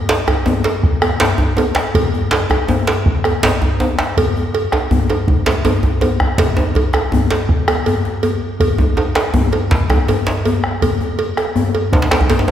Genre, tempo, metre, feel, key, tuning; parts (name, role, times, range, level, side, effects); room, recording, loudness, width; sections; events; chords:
west african traditional, West African drum ensemble; 108 BPM (dotted quarters); 12/8; straight
cowbell; percussion; 0.1-12.5 s; -20 LUFS; right 3 dB
djembe; percussion; 0.1-12.5 s; -20 LUFS; left 3 dB
djembe; percussion; 0.1-12.5 s; -17 LUFS; right 1 dB
bombo; percussion; 0.3-12.3 s; -20 LUFS; equal
wet concert hall reverb, RT60 1.9 s; heard from further back in the room; -13 LUFS; side -10 dB against mid
0.0-12.5 A section